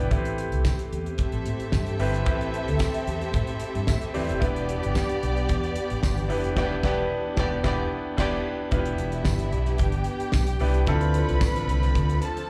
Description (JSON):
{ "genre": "disco", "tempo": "112 BPM", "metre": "4/4", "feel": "straight", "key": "unclear", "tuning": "A4 = 440 Hz", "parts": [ { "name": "warm studio violin section", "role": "second line", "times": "0.0-12.5 s", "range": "B3 to B5", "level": "-35 LUFS", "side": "equal", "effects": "slapback echo" }, { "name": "clear baby grand piano", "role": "accompaniment", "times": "0.0-12.5 s", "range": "A3 to E5", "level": "-32 LUFS", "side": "equal", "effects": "slapback echo" }, { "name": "dark studio string section", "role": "sustained chords", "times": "0.0-12.5 s", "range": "D3 to G4", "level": "-36 LUFS", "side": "equal", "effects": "none" }, { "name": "vintage muted fingered electric bass", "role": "bass", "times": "0.0-12.2 s", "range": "E1 to A2", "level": "-29 LUFS", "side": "equal", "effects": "none" }, { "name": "damped 70s drum kit", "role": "drums", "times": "0.1-12.5 s", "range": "crash cymbal, hi-hat, kick drum, snare drum", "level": "-29 LUFS", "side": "equal", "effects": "none" }, { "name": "tambourine", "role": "percussion", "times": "0.7-11.5 s", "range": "none", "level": "-45 LUFS", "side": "equal", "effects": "none" } ], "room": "small room ambience", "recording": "live gig heard through the venue's PA, club reverb", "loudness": "-25 LUFS", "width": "mono", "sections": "0.0-8.7 A section; 8.7-12.5 B section", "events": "grand piano fill 3.6-4.4; band accent 6.6-8.7", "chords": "0.1 Am7; 4.4 Em7; 10.9 Dm7" }